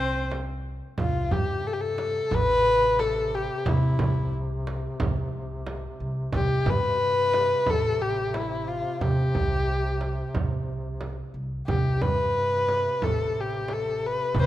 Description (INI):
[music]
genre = Persian modal ensemble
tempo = 90 BPM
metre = 4/4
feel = straight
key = C dastgah mahur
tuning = A4 = 442 Hz
[part]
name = warm kamancheh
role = melody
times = 0.0-14.5 s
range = E4 to C5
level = -25 LUFS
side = left 2 dB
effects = none
[part]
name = upright bass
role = bass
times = 0.0-14.5 s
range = A1 to C3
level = -29 LUFS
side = equal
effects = none
[part]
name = tombak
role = percussion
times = 0.2-14.5 s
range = none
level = -33 LUFS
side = right 2 dB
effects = none
[part]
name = frame drum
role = percussion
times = 0.3-14.5 s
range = none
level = -32 LUFS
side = right 3 dB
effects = none
[part]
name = mellow duduk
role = drone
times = 1.0-14.5 s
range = C3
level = -36 LUFS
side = equal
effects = none
[sound]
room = light reverb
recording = minimal, uncompressed stereo recording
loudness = -23 LUFS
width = side -13 dB against mid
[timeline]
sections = 1.0-14.5 A section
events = none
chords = none